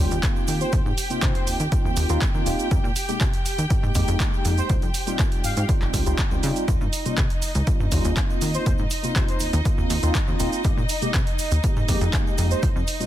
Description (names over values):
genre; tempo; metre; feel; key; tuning
filtered disco house; 121 BPM; 4/4; straight; unclear; A4 = 440 Hz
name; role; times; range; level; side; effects
tine electric piano; accompaniment; 0.0-13.1 s; G3 to G4; -29 LUFS; equal; medium tremolo, phaser, sidechain pumping
rich studio string section; sustained chords; 0.0-13.1 s; Eb4 to G5; -31 LUFS; right 1 dB; sidechain pumping
plucky analog bass; bass; 0.0-13.1 s; Eb1 to Db3; -24 LUFS; equal; sidechain pumping
punchy analog drum machine; drums; 0.1-13.1 s; handclaps, hi-hat, shaker; -29 LUFS; right 2 dB; sidechain pumping on hats, sidechain pumping on cymbals, sidechain pumping on perc
tube shaker; percussion; 0.1-13.1 s; none; -40 LUFS; left 4 dB; sidechain pumping on perc
electronic kick drum; drums; 0.2-12.7 s; none; -23 LUFS; equal; none
analog synth brass; melody; 0.6-1.4, 4.6-9.4, 12.5-12.7 s; C5 to F5; -33 LUFS; right 1 dB; chorus, sidechain pumping, tape echo
room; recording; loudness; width
little or no reverb; dense, heavily limited modern master; -20 LUFS; side -12 dB against mid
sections
0.0-13.1 A section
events
none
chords
0.5 Ab69/Eb; 4.7 Dbmaj9#11; 6.7 Eb9; 8.4 Ab69/Eb (rootless); 10.6 Fm11